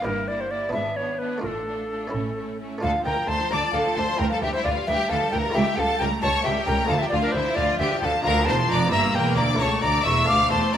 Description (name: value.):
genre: classical, baroque-style concerto movement with solo episodes.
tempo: 88 BPM (dotted quarters).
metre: 6/8.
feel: straight.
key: D minor.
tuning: A4 = 441 Hz.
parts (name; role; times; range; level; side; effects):
alto recorder; melody; 0.0-10.8 s; A4 to D6; -25 LUFS; left 1 dB; none.
rich studio violin section; melody; 0.0-10.8 s; E4 to F6; -29 LUFS; left 4 dB; none.
clear chamber violin section; second line; 0.0-10.8 s; C#4 to F5; -27 LUFS; left 1 dB; none.
buff-stop harpsichord; accompaniment; 0.0-10.8 s; C#2 to A4; -34 LUFS; right 1 dB; none.
rich symphonic viola section; accompaniment; 0.0-10.8 s; D3 to B3; -32 LUFS; right 1 dB; none.
clear chamber double bass section; bass; 0.1-10.8 s; E1 to D2; -30 LUFS; right 2 dB; none.
rich studio cello section; bass; 0.1-10.8 s; C#2 to A2; -29 LUFS; right 2 dB; none.
room: moderate recital hall reverb, RT60 1.6 s.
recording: none.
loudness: -20 LUFS.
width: side -9 dB against mid.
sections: 0.0-2.8 A section; 2.8-10.8 B section.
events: none.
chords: 0.1 Edim/G; 0.7 E7/G#; 1.4 Dm/A; 2.1 A; 2.8 Dm; 4.2 Dmadd9; 5.6 A7/C#; 6.9 Dm; 8.3 Bbmaj9#11; 8.9 Edim; 9.6 A/C#.